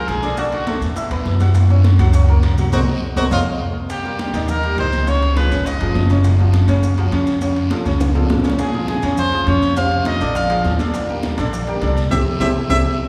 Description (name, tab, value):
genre	latin, salsa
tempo	205 BPM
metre	4/4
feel	straight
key	unclear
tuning	A4 = 444 Hz
part	bright trumpet	melody	0.0-6.1, 8.6-12.8 s	F4 to F5	-25 LUFS	equal	none
part	bright upright piano	accompaniment	0.0-12.8 s	C3 to F#6	-24 LUFS	equal	none
part	upright bass	bass	0.0-12.8 s	Gb1 to F#2	-20 LUFS	equal	none
part	bongos	percussion	0.1-12.8 s	none	-32 LUFS	equal	none
part	congas	percussion	0.1-12.8 s	none	-30 LUFS	equal	none
part	guiro	percussion	0.1-12.8 s	none	-39 LUFS	equal	none
part	maracas	percussion	0.1-12.8 s	none	-44 LUFS	equal	none
part	timbales	percussion	0.1-12.8 s	none	-31 LUFS	equal	none
room	wet church reverb, RT60 2.7 s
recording	recorded in a church or concert hall, small room ambience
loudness	-17 LUFS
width	mono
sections	0.0-3.9 A section; 3.9-13.1 B section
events	drum fill 2.7-3.9, 8.0-8.6, 12.6-13.1; band accent 2.7-3.9, 12.1-13.1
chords	0.4 Bm7; 1.0 Esus2; 1.6 Gb; 2.7 Cm7; 3.3 Dbadd9/F; 3.9 Cm7; 5.1 Db9; 6.2 Gb5; 7.4 Faug; 8.6 Bbm7; 9.8 F5; 10.4 Bb7; 10.9 Ebmaj7; 12.1 C